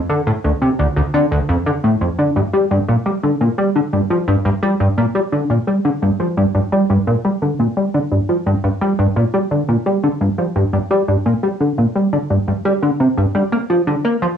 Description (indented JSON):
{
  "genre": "ambient",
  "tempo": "86 BPM",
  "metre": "4/4",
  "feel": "straight",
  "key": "G minor",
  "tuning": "A4 = 442 Hz",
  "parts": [
    { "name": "plucky analog bass", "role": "solo", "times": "0.1-14.3 s", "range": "D2 to Bb3", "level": "-14 LUFS", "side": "equal", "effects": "analog chorus, tape echo" }
  ],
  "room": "wet small room reverb, RT60 0.5 s",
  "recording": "home recording on cassette",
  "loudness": "-15 LUFS",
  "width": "side -8 dB against mid",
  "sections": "0.0-2.4 A section; 2.4-14.4 B section",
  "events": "none",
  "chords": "none"
}